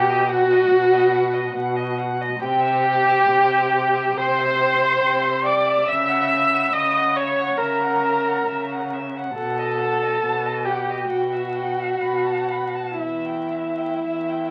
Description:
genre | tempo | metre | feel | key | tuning
classical, slow romantic movement for string quartet | 68 BPM | 4/4 | uneven beats, rubato | unclear | A4 = 441 Hz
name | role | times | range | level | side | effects
muted violin | melody | 0.0-14.5 s | D#5 to B5 | -31 LUFS | equal | none
muted violin | second line | 0.0-14.5 s | E5 to E6 | -26 LUFS | equal | none
muted viola | accompaniment | 0.0-14.5 s | E4 to E5 | -23 LUFS | equal | none
muted cello | bass | 0.0-14.5 s | E2 to C#3 | -31 LUFS | equal | none
room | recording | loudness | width
wet large studio reverb, RT60 1.0 s | very old 78 rpm record, vinyl crackle | -21 LUFS | mono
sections
0.0-14.5 A section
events
none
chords
0.0 B; 2.4 C; 5.9 F#7/C#; 9.4 B7; 11.1 Em/B; 13.0 Em

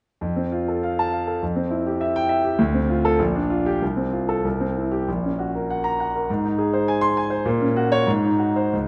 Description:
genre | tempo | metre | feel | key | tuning
classical, virtuoso piano study | 88-104 BPM | 2/4 | rubato | F major | A4 = 440 Hz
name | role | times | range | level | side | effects
warm concert grand piano | solo | 0.2-8.9 s | Bb1 to C6 | -22 LUFS | equal | none
room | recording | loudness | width
wet recital hall reverb, RT60 1.6 s | nothing above 10.4 kHz | -22 LUFS | mono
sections
0.2-8.9 A section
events
none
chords
0.2 F; 1.4 C/F; 2.6 Dm7; 3.2 Gm7/Bb; 3.8 F/C; 4.4 C; 5.1 Gb/Bb; 6.3 Ab; 7.5 Gb/Bb; 8.1 Ab7

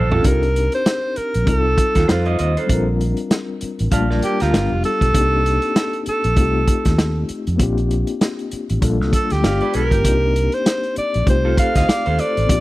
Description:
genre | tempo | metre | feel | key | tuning
lush 1970s-style soul | 98 BPM | 4/4 | swing 58% on 16ths | C dorian | A4 = 439 Hz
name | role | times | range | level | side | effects
breathy alto saxophone | melody | 0.0-12.6 s | F4 to F5 | -20 LUFS | equal | none
mellow reed electric piano | accompaniment | 0.0-12.6 s | Eb3 to A5 | -24 LUFS | left 4 dB | fast tremolo
electric guitar through a small old amp | riff | 0.0-4.7, 9.4-12.5 s | F4 to F5 | -24 LUFS | right 3 dB | none
fingered electric bass | bass | 0.0-12.6 s | F1 to F2 | -20 LUFS | equal | none
vintage drum kit | drums | 0.1-12.6 s | hi-hat, kick drum, snare drum, toms | -19 LUFS | equal | none
room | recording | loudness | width
studio ambience | dry, close 1970s-style studio recording | -16 LUFS | side -17 dB against mid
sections
0.2-12.6 A section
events
drum fill 0.0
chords
0.2 Cm7; 1.5 F7/C; 2.7 Bb69; 3.9 Gm7/Bb; 4.5 G7; 5.1 Cm7; 6.4 F7/C; 7.6 Bb69; 8.8 Gm7/Bb; 9.4 G7b9; 10.0 Cm7; 11.3 F7/C

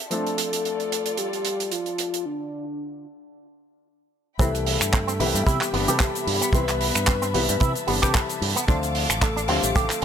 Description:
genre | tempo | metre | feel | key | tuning
nu-disco, nu disco | 112 BPM | 4/4 | swing 56% on 16ths | C major | A4 = 440 Hz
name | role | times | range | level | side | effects
warm baby grand piano | accompaniment | 0.0-10.0 s | C3 to B4 | -29 LUFS | left 4 dB | none
dark studio string section | sustained chords | 0.0-10.0 s | B3 to D6 | -33 LUFS | left 3 dB | sidechain pumping
damped 70s drum kit | drums | 0.0-10.0 s | finger snaps, handclaps, hi-hat, shaker | -26 LUFS | right 2 dB | small room ambience
soft octave-layered synth lead | melody | 0.1-10.0 s | D4 to B4 | -29 LUFS | left 2 dB | chorus, ping-pong delay
electric guitar with an envelope filter | riff | 4.4-10.0 s | G3 to G4 | -29 LUFS | right 5 dB | analog chorus
fingered electric bass with an envelope filter | bass | 4.4-10.0 s | G1 to C3 | -28 LUFS | equal | none
kick drum | drums | 4.4-9.9 s | none | -22 LUFS | right 1 dB | small room ambience
room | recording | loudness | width
light reverb, small room ambience | none | -21 LUFS | side -8 dB against mid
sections
0.0-4.4 A section; 4.4-10.0 B section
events
break 2.3-4.4; drop 4.4-10.0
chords
0.1 Dm7; 4.4 Cmaj7; 8.7 Dm7

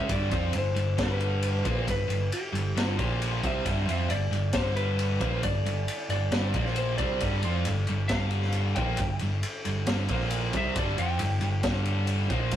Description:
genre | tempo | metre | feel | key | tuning
hard rock | 135 BPM | 4/4 | straight | unclear | A4 = 439 Hz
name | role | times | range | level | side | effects
lightly driven lead guitar | melody | 0.0-12.6 s | G4 to G5 | -34 LUFS | left 1 dB | none
high-gain distorted guitar | riff | 0.0-12.6 s | G2 to F4 | -34 LUFS | left 6 dB | distortion
overdriven semi-hollow guitar | riff | 0.0-12.6 s | G2 to F4 | -33 LUFS | right 3 dB | none
overdriven picked electric bass | bass | 0.0-12.6 s | G1 to F2 | -29 LUFS | equal | none
raw garage drum kit | drums | 0.1-12.6 s | kick drum, ride cymbal, snare drum | -31 LUFS | equal | none
room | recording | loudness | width
light reverb | rough rehearsal-room recording, tube saturation | -25 LUFS | side -11 dB against mid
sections
0.1-12.6 A section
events
none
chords
0.1 G; 3.0 Bb5; 3.4 G; 6.5 Bb5; 7.0 G5; 10.1 Bb5; 10.5 G5

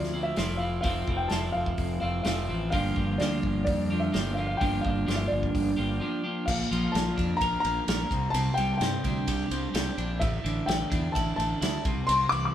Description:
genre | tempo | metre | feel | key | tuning
indie rock | 128 BPM | 4/4 | straight | unclear | A4 = 440 Hz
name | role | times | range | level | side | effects
dark upright piano | melody | 0.0-12.5 s | D5 to D6 | -31 LUFS | left 2 dB | none
twelve-string electric guitar | riff | 0.0-12.5 s | G2 to Bb4 | -29 LUFS | equal | spring reverb
fuzz fingered electric bass | bass | 0.0-12.5 s | F1 to G2 | -32 LUFS | equal | overdrive
loose indie drum kit | drums | 0.0-12.4 s | crash cymbal, hi-hat, kick drum, ride cymbal, snare drum | -32 LUFS | equal | none
room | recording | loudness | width
moderate stone room reverb, RT60 1.1 s | band playing live in one room | -25 LUFS | side -10 dB against mid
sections
0.0-6.5 A section; 6.5-12.5 B section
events
break 6.0-6.5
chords
0.0 Fmaj7; 2.7 Gm7; 6.5 Bb; 8.1 Csus2; 10.2 Asus4; 11.9 C

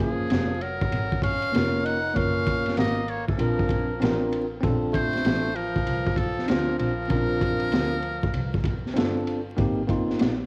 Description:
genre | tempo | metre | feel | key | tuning
hip hop, jazz-hop | 97 BPM | 4/4 | swing 62% on 16ths | unclear | A4 = 440 Hz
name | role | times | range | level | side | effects
trumpet with metal mute | melody | 0.0-8.9 s | Ab4 to Gb5 | -33 LUFS | equal | none
breathy tenor saxophone | second line | 0.0-8.9 s | F3 to Eb4 | -34 LUFS | equal | cassette tape
bell-like tine electric piano | accompaniment | 0.0-10.3 s | Bb3 to C5 | -30 LUFS | equal | cassette tape
dark double bass | bass | 0.0-10.5 s | F1 to D2 | -34 LUFS | equal | none
crunchy breakbeat drum kit | drums | 0.3-10.4 s | hi-hat, kick drum, ride cymbal, snare drum | -29 LUFS | equal | vintage 12-bit sampler grit, cassette tape
room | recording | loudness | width
light reverb, small room ambience | home recording on cassette, vinyl crackle | -25 LUFS | mono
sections
0.0-9.6 A section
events
none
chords
0.0 Gbmaj9; 3.4 Bbmaj9; 9.6 Abmaj9

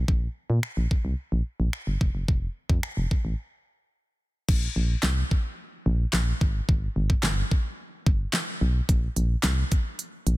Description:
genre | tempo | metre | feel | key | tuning
dance-pop | 109 BPM | 4/4 | straight | unclear | A4 = 440 Hz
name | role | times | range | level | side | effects
solid FM bass | bass | 0.0-10.4 s | F1 to Bb2 | -25 LUFS | equal | sidechain pumping
pop drum kit | drums | 0.1-10.4 s | crash cymbal, finger snaps, handclaps, hi-hat, kick drum, snare drum | -25 LUFS | equal | soft clipping on snare
room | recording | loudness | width
digital ambience | dense, heavily limited modern master | -24 LUFS | side -19 dB against mid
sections
0.0-4.5 A section; 4.5-10.4 B section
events
break 3.4-4.5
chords
none

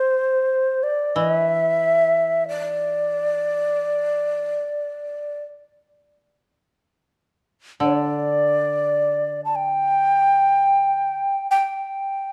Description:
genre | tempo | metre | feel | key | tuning
japanese traditional, Japanese chamber music | free time | none | none | unclear | A4 = 440 Hz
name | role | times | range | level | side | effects
mellow shakuhachi | melody | 0.0-12.3 s | C5 to A5 | -22 LUFS | equal | none
koto | accompaniment | 1.2-11.2 s | D3 to E3 | -29 LUFS | equal | none
room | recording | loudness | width
wet recital hall reverb, RT60 1.6 s | dark, warm production | -21 LUFS | mono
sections
0.0-12.3 A section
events
none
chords
none

